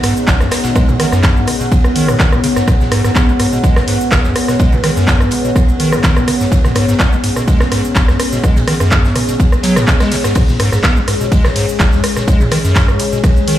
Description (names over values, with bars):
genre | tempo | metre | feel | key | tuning
acid house | 125 BPM | 4/4 | swing 53% on 16ths | G# minor pentatonic | A4 = 439 Hz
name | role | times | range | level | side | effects
dark analog pad | sustained chords | 0.0-13.6 s | G#3 to B4 | -20 LUFS | left 1 dB | chorus, phaser, sidechain pumping
acid bass, square | riff | 0.0-13.6 s | G#1 to B3 | -17 LUFS | equal | overdrive, analog chorus, cassette tape, sidechain pumping, dub echo
modern studio drum kit | drums | 0.0-13.6 s | ride cymbal, snare drum | -26 LUFS | right 1 dB | high-pass filter on cymbals, high-pass filter on snare, high-pass filter on room
punchy analog drum machine | drums | 0.0-13.6 s | crash cymbal, handclaps, hi-hat, ride cymbal, rim click, shaker, toms | -18 LUFS | right 1 dB | none
deep dark ambient pad | texture | 0.0-13.6 s | G#4 to G#5 | -22 LUFS | left 1 dB | chorus, built-in reverb, sidechain pumping
electronic kick drum | drums | 0.3-13.3 s | none | -12 LUFS | equal | none
room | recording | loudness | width
light reverb, digital ambience | played on a big sound system in a bare room, large studio reverb | -10 LUFS | side -12 dB against mid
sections
0.0-13.6 A section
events
none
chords
0.0 G#m7